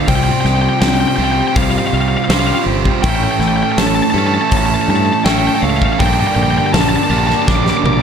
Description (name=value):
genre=post-rock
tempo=81 BPM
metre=4/4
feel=straight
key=unclear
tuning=A4 = 440 Hz
part: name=fuzz lead guitar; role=melody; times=0.0-8.0 s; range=F5 to D6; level=-18 LUFS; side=left 3 dB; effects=distortion, digital delay
part: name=warm analog pad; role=sustained chords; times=0.0-8.0 s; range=E3 to A5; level=-27 LUFS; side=left 5 dB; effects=chorus
part: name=twelve-string electric guitar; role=arpeggios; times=0.0-8.0 s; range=G2 to C5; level=-22 LUFS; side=left 7 dB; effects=digital delay
part: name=cranked stack guitar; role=riff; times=0.0-8.0 s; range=G2 to C5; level=-17 LUFS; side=right 10 dB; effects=overdrive
part: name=growling fingered electric bass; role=bass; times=0.1-8.0 s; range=G1 to G2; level=-18 LUFS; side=equal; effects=overdrive
part: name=big rock drum kit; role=drums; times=0.1-8.0 s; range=hi-hat, kick drum, snare drum, toms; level=-18 LUFS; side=left 1 dB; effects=none
room=studio ambience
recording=none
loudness=-12 LUFS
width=side -7 dB against mid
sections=0.0-8.0 A section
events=drum fill 7.5-8.0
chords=0.1 Csus4; 3.0 A; 6.0 Gmadd9/Bb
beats=| 0.07 0.81 1.55 2.29 | 3.04 3.77 4.51 5.25 | 6.00 6.74 7.48